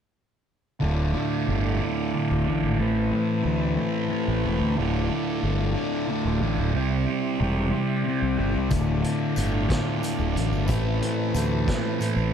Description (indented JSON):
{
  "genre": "psychedelic rock",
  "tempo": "61 BPM (dotted quarters)",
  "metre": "6/8",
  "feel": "straight",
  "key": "D dorian",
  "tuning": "A4 = 442 Hz",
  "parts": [
    { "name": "overdriven combo organ", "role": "sustained chords", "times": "0.8-12.3 s", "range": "C4 to D5", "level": "-32 LUFS", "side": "right 2 dB", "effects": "none" },
    { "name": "fuzz guitar", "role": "riff", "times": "0.8-12.3 s", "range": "D2 to C4", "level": "-25 LUFS", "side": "equal", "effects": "distortion, phaser" },
    { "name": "fuzz fingered electric bass", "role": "bass", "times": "0.8-12.3 s", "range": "D1 to D2", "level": "-26 LUFS", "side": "equal", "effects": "overdrive" },
    { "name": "vintage drum kit", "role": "drums", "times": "8.7-12.2 s", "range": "hi-hat, kick drum, snare drum", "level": "-30 LUFS", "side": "equal", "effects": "none" },
    { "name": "tambourine", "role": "percussion", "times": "8.7-12.3 s", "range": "none", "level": "-45 LUFS", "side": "left 8 dB", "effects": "none" }
  ],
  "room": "light reverb, small room ambience",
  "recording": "none",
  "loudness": "-22 LUFS",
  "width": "side -8 dB against mid",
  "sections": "0.8-12.3 A section",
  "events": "none",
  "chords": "0.8 Dmadd9; 2.8 Amadd9; 4.8 Dmadd9; 6.7 Cadd9; 8.7 Dmadd9; 10.7 Amadd9",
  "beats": "| 0.82 1.81 | 2.80 3.79 | 4.77 5.76 | 6.74 7.73 | 8.71 9.70 | 10.69 11.67"
}